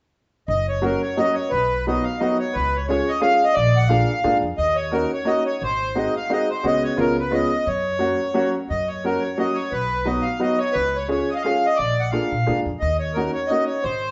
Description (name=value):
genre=musette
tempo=175 BPM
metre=3/4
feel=straight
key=F# major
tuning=A4 = 441 Hz
part: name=accordion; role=melody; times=0.5-14.1 s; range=A#4 to F#5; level=-24 LUFS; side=equal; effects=none
part: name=upright bass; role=bass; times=0.5-14.1 s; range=F#1 to A#2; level=-28 LUFS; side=equal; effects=none
part: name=clear upright piano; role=accompaniment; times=0.8-13.7 s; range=F#3 to G#4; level=-26 LUFS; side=equal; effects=none
room=wet large studio reverb, RT60 1.2 s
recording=band playing live in one room, nothing above 7.8 kHz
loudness=-21 LUFS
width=mono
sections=0.5-8.7 A section; 8.7-14.1 A section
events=none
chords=0.5 F#; 1.5 B; 2.5 C#; 3.6 A#7; 4.6 D#m7; 5.6 G#7; 6.6 C#7sus4; 7.0 C#7; 7.7 F#; 9.7 B; 10.7 C#; 11.8 A#7; 12.8 D#m7